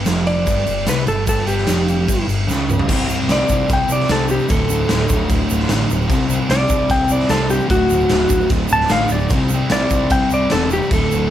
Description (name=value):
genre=garage rock duo or trio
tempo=150 BPM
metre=4/4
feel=straight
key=unclear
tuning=A4 = 440 Hz
part: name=fuzz guitar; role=riff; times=0.0-11.3 s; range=D2 to C4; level=-20 LUFS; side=equal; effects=distortion
part: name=growling picked electric bass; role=bass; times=0.0-11.3 s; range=D1 to C#2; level=-23 LUFS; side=equal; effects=overdrive
part: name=raw garage drum kit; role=drums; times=0.1-11.0 s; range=crash cymbal, kick drum, snare drum, toms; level=-20 LUFS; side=equal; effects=none
part: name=egg shaker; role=percussion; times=0.1-11.2 s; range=none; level=-34 LUFS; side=right 6 dB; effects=none
part: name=clean lap steel guitar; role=melody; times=0.3-11.3 s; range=F#4 to A5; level=-19 LUFS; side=equal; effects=none
room=light reverb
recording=band playing live in one room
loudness=-14 LUFS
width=side -11 dB against mid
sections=0.0-2.9 A section; 2.9-11.3 B section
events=drum fill 2.5-2.9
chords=0.0 G5; 2.9 C5; 4.5 D5; 6.1 C5; 7.7 D; 9.3 C